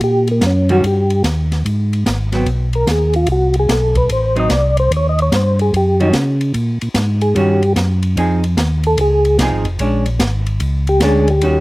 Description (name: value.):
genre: soul jazz organ trio.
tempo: 147 BPM.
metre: 4/4.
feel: swing 66% on 8ths.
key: Eb mixolydian.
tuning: A4 = 440 Hz.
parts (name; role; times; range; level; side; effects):
percussive tonewheel organ; melody; 0.0-11.6 s; Bb3 to Eb5; -16 LUFS; equal; slow rotary speaker, chorus vibrato, slapback echo.
mellow tonewheel organ; bass; 0.0-11.6 s; F1 to Db3; -16 LUFS; equal; overdrive, chorus vibrato, slow rotary speaker.
open jazz drum kit; drums; 0.0-11.5 s; hi-hat, kick drum, ride cymbal, snare drum; -21 LUFS; equal; none.
vintage hollow-body jazz guitar; accompaniment; 0.7-11.6 s; Eb3 to Ab4; -18 LUFS; right 1 dB; slapback echo.
room: little or no reverb.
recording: recorded outdoors, with no room sound.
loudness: -13 LUFS.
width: side -20 dB against mid.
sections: 0.0-11.6 A section.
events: tonewheel organ solo 0.0-11.6.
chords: 0.0 Eb(#9); 1.6 Abm; 3.3 Am; 4.9 Eb7#9; 8.2 Fm7; 9.8 Bb7#9.